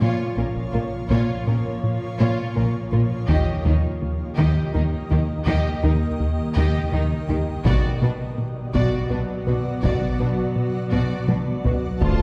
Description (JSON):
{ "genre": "cinematic, hybrid orchestral and electronic film score", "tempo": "55 BPM (dotted quarters)", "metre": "6/8", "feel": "straight", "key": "unclear", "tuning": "A4 = 440 Hz", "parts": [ { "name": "warm symphonic violin section", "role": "second line", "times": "0.0-12.2 s", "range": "Bb3 to Eb5", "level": "-34 LUFS", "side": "equal", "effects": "none" }, { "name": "granular cloud pad", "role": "sustained chords", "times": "0.0-12.2 s", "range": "Eb3 to Eb5", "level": "-31 LUFS", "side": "equal", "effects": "built-in reverb" }, { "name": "soft round pluck", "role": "arpeggios", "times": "0.0-12.2 s", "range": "D3 to B4", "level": "-34 LUFS", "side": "equal", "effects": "none" }, { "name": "plucky analog bass", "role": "riff", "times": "0.0-12.2 s", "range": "D2 to B2", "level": "-27 LUFS", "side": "equal", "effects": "none" }, { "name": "dark symphonic cello section", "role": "bass", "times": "0.0-12.1 s", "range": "D2 to Eb3", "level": "-30 LUFS", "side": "equal", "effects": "none" }, { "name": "warm symphonic double bass section", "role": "bass", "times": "0.0-12.1 s", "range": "Bb1 to Eb2", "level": "-29 LUFS", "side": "equal", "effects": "none" }, { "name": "taiko ensemble", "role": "drums", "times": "0.6-12.2 s", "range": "none", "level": "-29 LUFS", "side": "equal", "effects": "none" }, { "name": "warm symphonic violin section", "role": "melody", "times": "12.0-12.2 s", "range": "A5", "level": "-35 LUFS", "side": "equal", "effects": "none" }, { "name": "rich symphonic viola section", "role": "accompaniment", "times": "12.0-12.2 s", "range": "F4", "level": "-34 LUFS", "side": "equal", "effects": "none" }, { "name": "mellow French horn section", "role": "sustained chords", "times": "12.0-12.2 s", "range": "A3 to F4", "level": "-32 LUFS", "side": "equal", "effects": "none" }, { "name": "mellow tuba", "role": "bass", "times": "12.0-12.2 s", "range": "D2", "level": "-30 LUFS", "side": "equal", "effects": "none" }, { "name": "pure sine sub bass", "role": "bass", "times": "12.0-12.2 s", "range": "D1", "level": "-27 LUFS", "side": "equal", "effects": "none" } ], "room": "wet scoring stage reverb, RT60 1.6 s", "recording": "heard from further back in the room", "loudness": "-22 LUFS", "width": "mono", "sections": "0.0-12.0 A section", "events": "build-up 0.0-12.0; drum fill 10.9-12.0", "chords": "0.0 Bbm; 3.3 Eb; 7.7 Bm" }